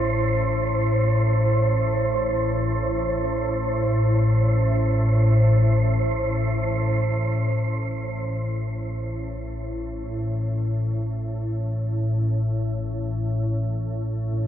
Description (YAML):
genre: ambient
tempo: free time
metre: none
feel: none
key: A minor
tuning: A4 = 445 Hz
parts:
  - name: organ-like drone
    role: drone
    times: 0.0-14.5 s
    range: A1 to A2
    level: -22 LUFS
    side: left 1 dB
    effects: ensemble chorus, built-in reverb
  - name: wind-like tuned noise texture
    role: texture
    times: 0.0-7.6 s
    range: C5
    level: -27 LUFS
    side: right 4 dB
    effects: built-in reverb
  - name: bronze singing bowl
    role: arpeggios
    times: 10.0-14.5 s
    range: A2 to E4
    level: -42 LUFS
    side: right 2 dB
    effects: none
room: wet huge ambient reverb, RT60 8.3 s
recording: none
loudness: -21 LUFS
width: side -10 dB against mid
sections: 0.0-7.6 A section; 7.6-14.5 B section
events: filter sweep on synth drone 7.6-14.5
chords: 0.0 Am; 7.6 A5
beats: free time